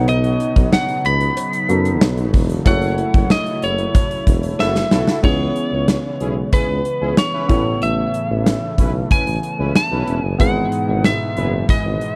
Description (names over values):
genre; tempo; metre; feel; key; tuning
1980s-style pop; 93 BPM; 4/4; straight; unclear; A4 = 444 Hz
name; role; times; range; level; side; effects
lightly driven lead guitar; melody; 0.0-12.2 s; B4 to B5; -24 LUFS; equal; tape echo
clear grand piano; accompaniment; 0.0-12.2 s; G#2 to C#5; -27 LUFS; equal; none
brassy analog pad; sustained chords; 0.0-12.2 s; B2 to E4; -29 LUFS; equal; chorus
warm tuba; bass; 0.0-12.0 s; E1 to F#2; -24 LUFS; equal; none
gated 80s drum kit; drums; 0.1-12.2 s; crash cymbal, hi-hat, kick drum, snare drum, tambourine; -19 LUFS; equal; none
cowbell; percussion; 0.1-4.7 s; none; -35 LUFS; equal; none
analog synth brass; stabs; 4.6-11.8 s; C#4 to B4; -30 LUFS; equal; chorus
room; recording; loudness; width
little or no reverb; none; -18 LUFS; mono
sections
0.0-5.2 A section; 5.2-12.2 B section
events
band accent 2.7-5.2; drum fill 4.6-5.2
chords
0.0 Badd9; 2.7 F#m7; 5.2 C#m7; 7.5 Aadd9; 10.4 Emaj7